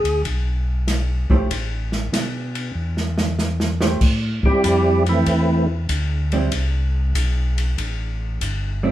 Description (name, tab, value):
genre	soul jazz organ trio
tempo	96 BPM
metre	4/4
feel	swing 67% on 8ths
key	A minor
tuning	A4 = 443 Hz
part	percussive tonewheel organ	melody	0.0-0.2, 4.5-5.7 s	E3 to G#4	-17 LUFS	right 1 dB	overdrive, chorus vibrato, slow rotary speaker
part	mellow tonewheel organ	bass	0.0-8.9 s	G1 to B2	-21 LUFS	equal	overdrive, chorus vibrato, slow rotary speaker
part	open jazz drum kit	drums	0.1-8.6 s	crash cymbal, hi-hat, kick drum, ride cymbal, snare drum	-24 LUFS	equal	none
part	hollow-body jazz guitar	accompaniment	1.3-8.9 s	G3 to C5	-22 LUFS	right 3 dB	none
room	moderate studio reverb, RT60 0.6 s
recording	heard from further back in the room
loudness	-18 LUFS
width	side -13 dB against mid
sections	0.0-4.0 A section; 4.0-8.9 B section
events	drum fill 2.8-4.0; tonewheel organ solo 4.0-8.9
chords	0.0 E7; 1.5 Asus2; 2.8 Emadd11; 4.0 Am7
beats	0.25 0.88 | 1.51 2.13 2.76 3.39 | 4.01 4.64 5.27 5.90 | 6.53 7.15 7.78 8.41